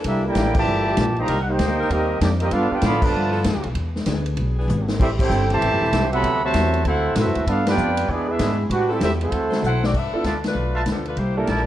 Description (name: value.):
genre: jazz, big band swing.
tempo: 194 BPM.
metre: 4/4.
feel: swing 63% on 8ths.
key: G major.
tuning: A4 = 440 Hz.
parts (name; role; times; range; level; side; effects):
clear saxophone section; sustained chords; 0.0-9.9 s; Bb2 to C5; -31 LUFS; left 1 dB; none.
upright bass; bass; 0.0-11.7 s; E1 to A2; -23 LUFS; equal; none.
swinging big-band drum kit; drums; 0.0-11.6 s; crash cymbal, hi-hat, kick drum, ride cymbal, snare drum, toms; -25 LUFS; left 1 dB; none.
mellow trumpet section; melody; 0.1-9.8 s; Bb3 to B5; -23 LUFS; equal; none.
warm trombone section; second line; 0.1-9.8 s; Bb2 to G4; -25 LUFS; right 3 dB; none.
mellow saxophone section; melody; 9.7-11.7 s; F3 to F#5; -26 LUFS; left 2 dB; none.
clear baby grand piano; accompaniment; 10.1-11.5 s; Bb3 to A4; -26 LUFS; right 2 dB; none.
warm trumpet section; stabs; 10.2-11.6 s; E4 to A5; -28 LUFS; right 1 dB; none.
room: moderate large studio reverb, RT60 1.3 s.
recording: worn, warbling old tape, cassette tape, warbly pitch drift.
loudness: -18 LUFS.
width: side -12 dB against mid.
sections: 0.0-9.9 A section; 9.9-11.7 B section.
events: band accent 0.5, 3.0, 5.2, 7.6, 10.4; drum fill 4.7-5.0, 9.6-9.9.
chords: 0.0 C13; 1.3 Cm7; 2.5 G13; 3.8 E7; 5.0 Am7; 6.2 D13; 7.5 G9; 8.1 E7b13; 8.7 Am7; 9.3 D13; 9.9 G13.